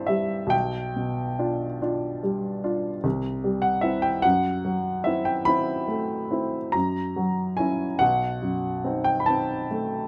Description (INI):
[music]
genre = classical, romantic nocturne for solo piano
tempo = 46-51 BPM (dotted quarters)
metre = 9/8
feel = rubato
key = unclear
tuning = A4 = 441 Hz
[part]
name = warm baby grand piano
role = solo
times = 0.0-10.1 s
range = B1 to B5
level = -25 LUFS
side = equal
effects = none
[sound]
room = light reverb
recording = none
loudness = -25 LUFS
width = mono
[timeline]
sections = 0.0-10.1 A section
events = none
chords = 0.0 C; 0.5 G7/B; 3.0 C; 4.2 F#m7b5; 6.7 F#7; 8.0 B7b9